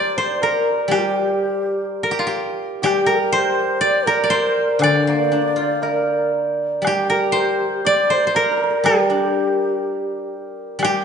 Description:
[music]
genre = chinese traditional, Chinese chamber ensemble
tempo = 61 BPM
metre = 2/4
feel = rubato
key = G yu mode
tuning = A4 = 441 Hz
[part]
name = koto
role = melody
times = 0.0-11.0 s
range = F4 to D5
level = -20 LUFS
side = equal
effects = none
[part]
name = breathy xiao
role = second line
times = 0.0-11.0 s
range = F4 to D5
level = -23 LUFS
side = left 3 dB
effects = none
[part]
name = hammered dulcimer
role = second line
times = 0.0-11.0 s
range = F4 to D5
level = -22 LUFS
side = right 4 dB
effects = none
[part]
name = guzheng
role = accompaniment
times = 0.0-11.0 s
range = D3 to Bb4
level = -24 LUFS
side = equal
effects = none
[part]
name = woodblock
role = percussion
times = 0.9-11.0 s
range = none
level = -28 LUFS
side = left 2 dB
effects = none
[sound]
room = wet recital hall reverb, RT60 1.9 s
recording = nothing above 10.5 kHz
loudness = -16 LUFS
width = side -7 dB against mid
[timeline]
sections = 0.0-11.0 A section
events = none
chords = none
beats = | 0.90 1.87 | 2.84 3.82 | 4.82 5.82 | 6.84 7.85 | 8.85 9.84 | 10.82

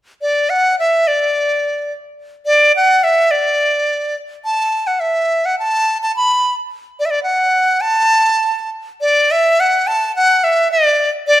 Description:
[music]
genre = chinese traditional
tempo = 106 BPM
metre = 2/4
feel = rubato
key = A zhi mode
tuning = A4 = 440 Hz
[part]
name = bright dizi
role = solo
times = 0.2-11.4 s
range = D5 to B5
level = -13 LUFS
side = equal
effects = none
[sound]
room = light reverb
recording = minimal, uncompressed stereo recording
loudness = -13 LUFS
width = side -13 dB against mid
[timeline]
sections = 0.0-9.0 A section; 9.0-11.4 B section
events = none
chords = none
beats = 0.51 | 1.08 1.64 | 2.20 2.75 | 3.31 3.87 | 4.45 5.02 | 5.58 6.15 | 6.70 7.26 | 7.82 8.40 | 8.99 9.56 | 10.13 10.70 | 11.25

